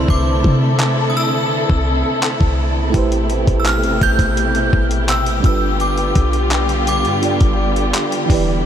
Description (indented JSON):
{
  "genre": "contemporary R&B",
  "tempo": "84 BPM",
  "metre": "4/4",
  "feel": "straight",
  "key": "unclear",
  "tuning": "A4 = 440 Hz",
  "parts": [
    { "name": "synth chime", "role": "melody", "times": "0.0-8.3 s", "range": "C6 to G6", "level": "-23 LUFS", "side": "right 1 dB", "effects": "ensemble chorus, phaser, analog delay" },
    { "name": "FM electric piano", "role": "accompaniment", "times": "0.0-8.7 s", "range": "C3 to D5", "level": "-22 LUFS", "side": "right 4 dB", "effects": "chorus" },
    { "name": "warm studio string section", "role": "sustained chords", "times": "0.0-8.7 s", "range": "B2 to A4", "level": "-20 LUFS", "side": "left 2 dB", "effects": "sidechain pumping" },
    { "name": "clean 808-style bass", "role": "bass", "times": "0.0-8.7 s", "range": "E1 to C3", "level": "-19 LUFS", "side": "equal", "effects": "none" },
    { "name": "dusty soul sampler-style drum kit", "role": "drums", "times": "0.1-8.5 s", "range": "handclaps, hi-hat, kick drum", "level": "-20 LUFS", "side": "equal", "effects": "none" }
  ],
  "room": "moderate huge ambient reverb, RT60 7.4 s",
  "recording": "dreamy mix soaked in reverb",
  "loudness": "-14 LUFS",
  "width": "side -9 dB against mid",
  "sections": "0.0-8.7 A section",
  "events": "break 0.0-2.9",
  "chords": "0.0 C69; 2.9 Am9; 5.4 G7"
}